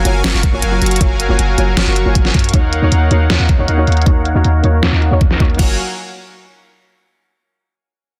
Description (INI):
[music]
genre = future bass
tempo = 157 BPM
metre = 4/4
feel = half-time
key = F# major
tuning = A4 = 440 Hz
[part]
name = soft round pluck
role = accompaniment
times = 0.0-5.8 s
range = A#3 to C#5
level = -25 LUFS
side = equal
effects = chorus, sidechain pumping, delay
[part]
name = soft supersaw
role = riff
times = 0.0-5.7 s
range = F#3 to C#6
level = -22 LUFS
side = equal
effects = sidechain pumping, low-pass filter, delay
[part]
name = warm 808-style bass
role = bass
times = 0.0-5.8 s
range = F#1 to F#2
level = -17 LUFS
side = equal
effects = sidechain pumping
[part]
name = pop drum kit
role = drums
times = 0.1-5.6 s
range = hi-hat, snare drum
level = -21 LUFS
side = equal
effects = overdrive, low-pass filter on hats, low-pass filter on snare, low-pass filter on cymbals, low-pass filter on room
[part]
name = pop drum kit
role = drums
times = 0.4-5.7 s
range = crash cymbal, kick drum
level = -16 LUFS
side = equal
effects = overdrive
[sound]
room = digital ambience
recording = dense, heavily limited modern master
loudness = -13 LUFS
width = mono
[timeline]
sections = 0.0-5.6 A section; 5.6-7.1 B section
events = filter sweep on drum 0.0-5.6; filter sweep on supersaw synth 0.0-5.6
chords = 0.0 F#maj7; 2.5 D#m7; 5.6 F#maj7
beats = 0.24 0.62 | 1.01 1.39 1.77 2.15 | 2.54 2.92 3.30 3.68 | 4.07 4.45 4.83 5.21 | 5.59